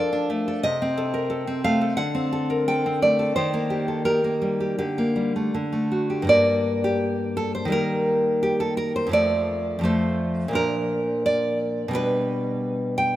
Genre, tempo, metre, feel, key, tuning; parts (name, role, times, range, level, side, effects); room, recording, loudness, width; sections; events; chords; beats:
romantic piece for solo classical guitar; 79-91 BPM; 2/4; rubato; G minor; A4 = 440 Hz
nylon-string guitar; solo; 0.0-13.2 s; F2 to G5; -21 LUFS; equal
moderate lush hall reverb, RT60 2.9 s; rough home demo mix; -21 LUFS; side -14 dB against mid
0.0-6.3 A section; 6.3-13.2 B section
0.0 Dm/F; 0.6 Adim/C; 2.0 D7; 3.4 Eb; 4.8 Gm/D; 5.5 D; 6.3 Gm; 7.7 Eb; 9.1 F; 10.6 Bb; 12.0 G/B
| 0.65 1.31 | 1.99 2.68 | 3.36 4.05 | 4.79 5.55 | 6.30 7.03 | 7.73 8.43 | 9.15 9.86 | 10.56 11.26 | 11.95 12.64